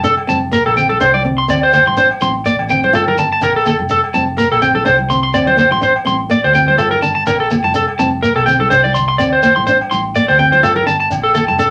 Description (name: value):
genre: highlife guitar band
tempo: 125 BPM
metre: 4/4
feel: swing 55% on 16ths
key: G minor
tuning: A4 = 441 Hz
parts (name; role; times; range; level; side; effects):
- nylon-string guitar; accompaniment; 0.0-11.7 s; Bb3 to F4; -23 LUFS; equal; none
- electric guitar at the edge of break-up; arpeggios; 0.0-11.7 s; A4 to C6; -14 LUFS; equal; none
- hollow-body short-scale fingered electric bass; bass; 0.0-11.7 s; F1 to D2; -25 LUFS; equal; none
- shekere; percussion; 0.0-11.7 s; none; -31 LUFS; equal; none
- agogo bells; percussion; 0.2-11.5 s; none; -25 LUFS; equal; none
- congas; percussion; 0.3-11.6 s; none; -27 LUFS; equal; none
room: wet club ambience, RT60 0.5 s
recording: none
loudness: -13 LUFS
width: mono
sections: 0.0-11.7 A section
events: none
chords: 0.0 Gmadd9 (rootless); 1.0 Csus2; 2.9 Gmadd9; 4.9 Csus2; 6.8 Gmadd9; 8.7 Csus2; 10.6 Gmadd9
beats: 0.05 0.53 | 1.01 1.49 1.98 2.46 | 2.94 3.42 3.90 4.38 | 4.86 5.34 5.83 6.30 | 6.79 7.27 7.75 8.23 | 8.71 9.19 9.67 10.15 | 10.63 11.11 11.59